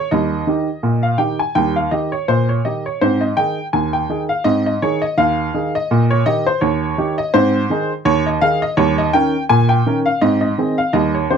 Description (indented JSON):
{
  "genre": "ragtime piano",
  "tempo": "83 BPM",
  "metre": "2/4",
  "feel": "swing 56% on 16ths",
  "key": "Ab major",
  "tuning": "A4 = 441 Hz",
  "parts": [
    { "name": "clear upright piano", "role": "solo", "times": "0.0-11.4 s", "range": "Eb2 to Ab5", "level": "-15 LUFS", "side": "equal", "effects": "none" }
  ],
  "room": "moderate small room ambience, RT60 0.5 s",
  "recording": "dark, warm production",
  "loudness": "-15 LUFS",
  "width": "side -7 dB against mid",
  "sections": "0.0-11.4 A section",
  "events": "none",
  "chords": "0.1 Eb; 3.0 Ab; 5.9 Eb/Bb; 7.3 Ab; 8.8 Eb7; 10.2 Ab"
}